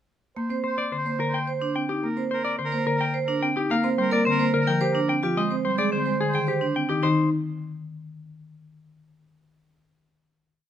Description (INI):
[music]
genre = classical, minimalist pattern music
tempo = 108 BPM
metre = 3/4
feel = straight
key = Eb major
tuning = A4 = 439 Hz
[part]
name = clear oboe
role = second line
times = 0.4-6.8 s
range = Bb4 to C5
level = -32 LUFS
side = right 3 dB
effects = none
[part]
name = buzzing marimba with medium mallets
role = accompaniment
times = 0.4-7.3 s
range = D3 to C4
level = -27 LUFS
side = equal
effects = none
[part]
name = vibraphone with hard mallets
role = arpeggios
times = 0.5-7.3 s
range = C4 to C5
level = -27 LUFS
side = right 2 dB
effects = none
[part]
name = semi-hollow electric guitar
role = melody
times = 0.6-7.3 s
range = G4 to G5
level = -27 LUFS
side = left 4 dB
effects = none
[sound]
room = moderate stone room reverb, RT60 1.3 s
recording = close, detailed microphones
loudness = -22 LUFS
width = side -10 dB against mid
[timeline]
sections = 0.4-7.0 A section; 7.0-8.7 final chord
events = none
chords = 0.4 Eb6 (rootless); 3.7 Bbadd9; 5.4 Abmaj7; 7.0 N.C.